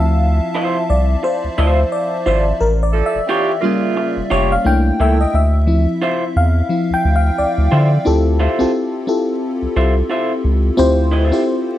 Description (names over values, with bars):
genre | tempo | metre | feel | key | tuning
R&B, neo-soul | 88 BPM | 4/4 | swing 58% on 16ths | D minor | A4 = 440 Hz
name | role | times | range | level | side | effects
FM electric piano with soft pad layer | accompaniment | 0.0-11.8 s | F3 to A5 | -17 LUFS | left 2 dB | chorus
round analog bass | bass | 0.0-11.3 s | F1 to D3 | -15 LUFS | equal | none
electric guitar through a small old amp | second line | 0.5-11.4 s | Bb3 to E5 | -21 LUFS | right 1 dB | none
mellow saxophone section | stabs | 2.9-4.3 s | C#3 to A4 | -20 LUFS | right 7 dB | none
room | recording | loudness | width
digital ambience | dry, close 1970s-style studio recording, vinyl crackle | -14 LUFS | side -13 dB against mid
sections
0.0-8.0 A section; 8.0-11.8 B section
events
FM electric piano solo 0.0-8.0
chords
0.0 Dm9; 2.6 A7b9b13; 4.6 C13; 5.3 Dm9